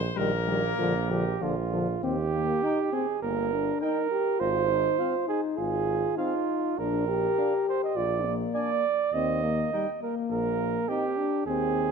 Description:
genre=classical, brass quintet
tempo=102 BPM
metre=4/4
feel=rubato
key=Eb major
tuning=A4 = 440 Hz
part: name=clear trumpet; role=melody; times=0.0-11.0 s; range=Bb4 to Ab5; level=-36 LUFS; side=left 10 dB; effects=none
part: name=clear tuba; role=bass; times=0.0-11.9 s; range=G1 to Eb2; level=-33 LUFS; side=right 3 dB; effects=none
part: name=mellow flugelhorn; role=second line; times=0.2-11.9 s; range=Bb3 to Eb5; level=-28 LUFS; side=right 8 dB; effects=none
part: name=mellow French horn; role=accompaniment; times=0.2-11.9 s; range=F3 to G4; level=-30 LUFS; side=left 7 dB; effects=none
part: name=mellow trombone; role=accompaniment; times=0.2-11.0 s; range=D3 to Eb4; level=-36 LUFS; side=right 2 dB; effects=none
room=moderate concert hall reverb, RT60 2.2 s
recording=close, detailed microphones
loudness=-25 LUFS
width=side -5 dB against mid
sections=0.0-2.0 A section; 2.0-11.9 B section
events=none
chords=0.0 Eb/Bb; 0.8 Bb; 2.0 Eb; 3.2 Eb/G; 4.4 Fm/Ab; 6.8 Bb; 9.1 Eb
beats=0.17 0.80 1.42 | 2.04 2.63 3.22 3.82 | 4.40 4.99 5.57 6.17 | 6.78 7.38 7.96 8.55 | 9.14 9.72 10.30 10.87 | 11.45

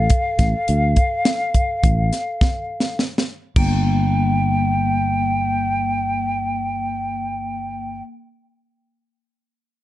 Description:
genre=progressive instrumental, band music in an uneven meter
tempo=104 BPM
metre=7/4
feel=straight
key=G minor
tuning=A4 = 440 Hz
part: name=mellow hollow jazz flute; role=melody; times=0.0-8.0 s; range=F5 to G5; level=-22 LUFS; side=equal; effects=none
part: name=vibraphone with hard mallets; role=second line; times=0.0-8.0 s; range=Bb3 to A4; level=-27 LUFS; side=left 4 dB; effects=plate reverb
part: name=fretless electric bass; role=bass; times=0.0-8.0 s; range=G1 to D2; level=-21 LUFS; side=equal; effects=lush chorus
part: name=tight funk drum kit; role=drums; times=0.1-3.7 s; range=crash cymbal, hi-hat, kick drum, snare drum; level=-18 LUFS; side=equal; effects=none
room=light reverb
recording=dark, warm production, nothing above 10.7 kHz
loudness=-18 LUFS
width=side -14 dB against mid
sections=0.0-3.6 A section; 3.6-7.6 B section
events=drum fill 2.4-3.6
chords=0.0 Dm; 3.6 Gm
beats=0.12 0.69 1.26 1.84 2.41 2.99 | 3.56 4.14 4.71 5.29 5.86 6.44 7.01

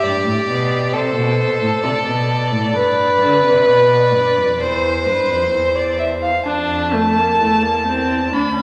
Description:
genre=classical, baroque-style fugue for string quartet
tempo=65 BPM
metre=4/4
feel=straight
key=unclear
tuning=A4 = 438 Hz
part: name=rich violin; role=melody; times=0.0-8.6 s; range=B4 to B5+20c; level=-23 LUFS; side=equal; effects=none
part: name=warm violin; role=second line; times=0.0-6.5 s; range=G4 to C5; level=-18 LUFS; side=equal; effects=none
part: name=warm cello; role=bass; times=0.0-8.6 s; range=D2 to D3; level=-24 LUFS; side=equal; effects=none
part: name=warm viola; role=accompaniment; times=6.5-8.6 s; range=A3 to D4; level=-21 LUFS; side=equal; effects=none
room=wet recital hall reverb, RT60 1.4 s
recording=none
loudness=-16 LUFS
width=mono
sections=0.0-6.5 A section; 6.5-8.6 B section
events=none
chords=0.0 N.C.; 0.9 D5; 2.8 G; 4.6 C/E; 6.5 Dm/F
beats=0.03 0.94 1.84 | 2.75 3.67 4.60 5.52 | 6.46 7.40 8.32

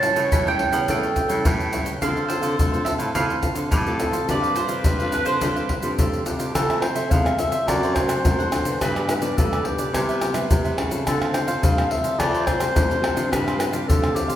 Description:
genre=samba and choro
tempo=106 BPM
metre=4/4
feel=straight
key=unclear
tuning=A4 = 439 Hz
part: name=mandolin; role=melody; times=0.0-6.2 s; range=B4 to B5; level=-25 LUFS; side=right 4 dB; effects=none
part: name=growling clarinet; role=second line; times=0.0-14.4 s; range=G4 to F5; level=-26 LUFS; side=left 1 dB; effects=none
part: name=cavaquinho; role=accompaniment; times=0.0-14.4 s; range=D4 to G5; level=-32 LUFS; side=right 4 dB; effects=none
part: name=nylon-string guitar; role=accompaniment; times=0.0-14.4 s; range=G2 to A4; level=-30 LUFS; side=left 2 dB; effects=none
part: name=warm baritone saxophone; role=bass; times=0.0-14.1 s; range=E2 to D3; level=-27 LUFS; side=equal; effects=none
part: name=egg shaker, pandeiro, surdo and tamborim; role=percussion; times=0.0-14.4 s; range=none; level=-23 LUFS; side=left 1 dB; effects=none
room=wet recital hall reverb, RT60 1.6 s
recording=recorded in a church or concert hall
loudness=-19 LUFS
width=side -11 dB against mid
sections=0.0-6.5 A section; 6.5-14.4 B section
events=clarinet solo 6.5-14.4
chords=0.0 A7; 2.0 Dm7; 4.3 G9sus4; 6.5 Fmaj7; 7.7 D7/F#; 8.8 G7; 9.9 Cmaj7; 11.1 Dm7; 12.2 Fmadd9; 13.3 G7sus4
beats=0.32 0.88 1.45 | 2.02 2.58 3.15 3.72 | 4.28 4.85 5.42 5.98 | 6.55 7.11 7.68 8.24 | 8.81 9.37 9.94 10.50 | 11.07 11.63 12.19 12.76 | 13.32 13.88

